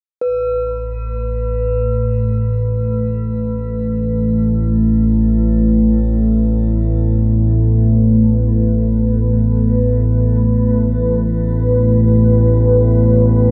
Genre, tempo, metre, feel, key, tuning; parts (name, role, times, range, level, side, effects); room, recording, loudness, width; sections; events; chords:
ambient; free time; A4 = 442 Hz
deep dark ambient pad; sustained chords; 1.8-13.5 s; A3 to B4; -21 LUFS; equal; chorus, built-in reverb
analog drone; drone; 0.5-13.5 s; A1 to A2; -16 LUFS; equal; chorus
bronze singing bowl; texture; 0.2-13.5 s; B4; -27 LUFS; equal; shimmer reverb
moderate huge ambient reverb, RT60 8.7 s; dark, warm production; -15 LUFS; mono
0.2-13.5 A section
0.2 Asus2